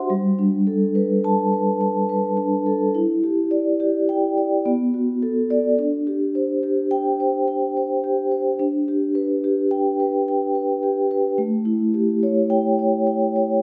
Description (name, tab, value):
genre	classical, contemporary piece for solo vibraphone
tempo	106 BPM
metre	5/4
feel	rubato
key	G major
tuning	A4 = 440 Hz
part	vibraphone with soft mallets	solo	0.0-13.6 s	G3 to C6	-21 LUFS	equal	none
room	moderate recital hall reverb, RT60 1.5 s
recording	none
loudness	-21 LUFS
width	mono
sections	0.1-13.6 A section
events	none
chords	0.1 Gadd9; 2.9 Em7; 4.7 Bm7; 5.8 D7sus4; 8.6 G/D; 11.4 A7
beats	| 0.09 0.66 1.23 1.80 2.37 | 2.94 3.52 4.09 4.66 5.22 | 5.79 6.36 6.92 7.49 8.04 | 8.60 9.16 9.72 10.28 10.84 | 11.39 11.94 12.51 13.07